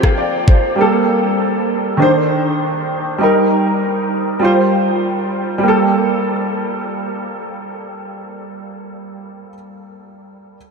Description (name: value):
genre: dancehall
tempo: 99 BPM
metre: 4/4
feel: straight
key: G minor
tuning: A4 = 441 Hz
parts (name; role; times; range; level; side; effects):
- warm grand piano; accompaniment; 0.0-10.6 s; Eb3 to G5; -15 LUFS; right 1 dB; ensemble chorus
- island pop drum kit; drums; 0.0-0.6 s; kick drum, rim click; -17 LUFS; left 1 dB; overdrive
room: wet huge ambient reverb, RT60 9.0 s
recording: dreamy mix soaked in reverb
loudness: -13 LUFS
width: side -4 dB against mid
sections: 0.0-5.6 A section; 5.6-8.1 B section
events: grand piano fill 0.0-0.8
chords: 0.0 Fsus2; 0.8 Gmadd9; 2.0 Cmadd9; 3.2 Eb; 4.4 Fsus2; 5.6 Gmadd9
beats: 0.18 | 0.78 1.39 2.00 2.60 | 3.21 3.81 4.42 5.03 | 5.63 6.24 6.84 7.45